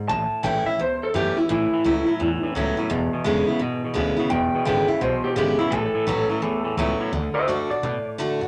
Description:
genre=rockabilly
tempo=171 BPM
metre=4/4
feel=swing 65% on 8ths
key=A major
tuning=A4 = 440 Hz
part: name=picked steel-string acoustic guitar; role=accompaniment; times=0.0-8.5 s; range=E2 to F#4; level=-27 LUFS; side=equal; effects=none
part: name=electric guitar through a small old amp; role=melody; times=0.1-8.0 s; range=E4 to A5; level=-25 LUFS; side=equal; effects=none
part: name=upright bass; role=bass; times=0.1-8.5 s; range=E1 to B2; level=-33 LUFS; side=equal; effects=none
part: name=twangy electric guitar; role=riff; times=1.5-7.1 s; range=E2 to F#3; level=-29 LUFS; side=equal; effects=none
room=moderate club reverb, RT60 0.7 s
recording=none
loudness=-23 LUFS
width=mono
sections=0.0-7.1 A section; 7.1-8.5 B section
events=clean electric guitar solo 0.0-7.1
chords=0.1 A; 2.9 E7; 5.7 A; 7.1 D

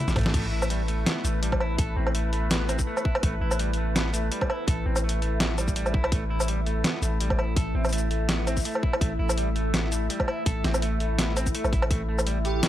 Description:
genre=half-time drum and bass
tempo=166 BPM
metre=4/4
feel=swing 55% on 16ths, half-time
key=A minor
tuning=A4 = 440 Hz
part: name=deep dark ambient pad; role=sustained chords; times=0.0-12.7 s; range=A3 to C6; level=-32 LUFS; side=left 1 dB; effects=chorus, built-in reverb, sidechain pumping
part: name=clean electric guitar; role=arpeggios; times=0.0-12.7 s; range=G3 to A4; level=-35 LUFS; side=right 2 dB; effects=tape echo
part: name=long sustained 808-style bass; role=bass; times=0.1-12.6 s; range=A1 to B1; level=-27 LUFS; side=equal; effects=none
part: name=boom bap sampler-style drum kit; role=drums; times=0.1-12.7 s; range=crash cymbal, hi-hat, shaker, snare drum, toms, woodblock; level=-27 LUFS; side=equal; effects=small room ambience
part: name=electronic kick drum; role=drums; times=0.2-12.0 s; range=none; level=-27 LUFS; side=equal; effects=small room ambience
part: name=metallic inharmonic drone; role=texture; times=12.2-12.7 s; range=E4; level=-36 LUFS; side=right 3 dB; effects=chorus, built-in reverb
part: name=airy dreamy lead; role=melody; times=12.4-12.6 s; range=G4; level=-29 LUFS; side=right 4 dB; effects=chorus
room=little or no reverb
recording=dry, gritty hardware recording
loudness=-23 LUFS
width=side -13 dB against mid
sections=0.3-12.7 A section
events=drum fill 0.0-0.3; band accent 0.2; drop 0.3-12.7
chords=0.3 A5

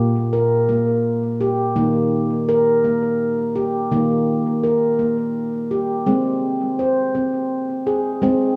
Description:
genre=world meditative, meditative tuned percussion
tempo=84 BPM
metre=3/4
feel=straight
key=unclear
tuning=A4 = 440 Hz
part: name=handpan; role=solo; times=0.0-8.6 s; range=Bb2 to C5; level=-19 LUFS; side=equal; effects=analog delay
room=wet plate reverb, RT60 2.6 s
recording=echo-heavy mix, small room ambience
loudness=-20 LUFS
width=mono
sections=0.0-8.6 A section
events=none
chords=0.0 Gm/Bb; 1.8 Eb; 6.1 Ab

